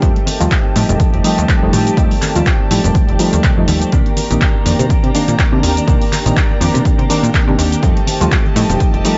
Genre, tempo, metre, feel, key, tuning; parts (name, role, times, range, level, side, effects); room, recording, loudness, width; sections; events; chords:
filtered disco house; 123 BPM; 4/4; swing 56% on 16ths; A4 = 441 Hz
reed electric piano; accompaniment; 0.0-9.2 s; Eb3 to F4; -20 LUFS; equal; phaser, vintage 12-bit sampler grit, sidechain pumping, low-pass filter
warm studio violin section; sustained chords; 0.0-9.2 s; G4 to Bb5; -28 LUFS; equal; sidechain pumping, low-pass filter
direct-recorded clean electric guitar; riff; 0.0-9.2 s; Eb3 to G4; -25 LUFS; equal; ensemble chorus, sidechain pumping, low-pass filter
plucky analog bass; bass; 0.0-9.0 s; F1 to C3; -19 LUFS; equal; sidechain pumping, low-pass filter
electronic kick drum; drums; 0.0-8.9 s; -17 LUFS; equal
punchy analog drum machine; drums; 0.0-9.2 s; cabasa, handclaps, hi-hat; -24 LUFS; equal; sidechain pumping on hats, sidechain pumping on perc
tube shaker and congas; percussion; 0.0-9.0 s; -28 LUFS; equal
little or no reverb; nothing above 7.8 kHz; -14 LUFS; mono
0.0-9.2 A section
filter sweep 0.0-9.2
0.0 F9; 3.9 Cm9; 7.8 F9